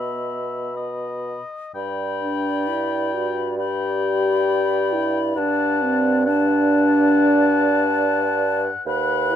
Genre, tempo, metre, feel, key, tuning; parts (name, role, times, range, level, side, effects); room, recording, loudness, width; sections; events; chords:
classical, slow romantic movement for wind quintet; 59-70 BPM; 4/4; rubato; G major; A4 = 436 Hz
silver concert flute; melody; 0.0-9.4 s; A5 to B5; -27 LUFS; left 10 dB
warm oboe; second line; 0.0-9.4 s; D#5 to G5; -27 LUFS; left 4 dB
dark French horn; accompaniment; 0.0-9.4 s; B3 to G4; -21 LUFS; equal
dark clarinet; accompaniment; 0.0-9.4 s; B4 to D#5; -28 LUFS; right 14 dB
warm bassoon; bass; 0.0-9.4 s; D#2 to B2; -25 LUFS; right 1 dB
light reverb; close, detailed microphones; -18 LUFS; side -10 dB against mid
0.0-1.8 A section; 1.8-9.4 B section
0.0 B; 1.8 G; 5.4 D/G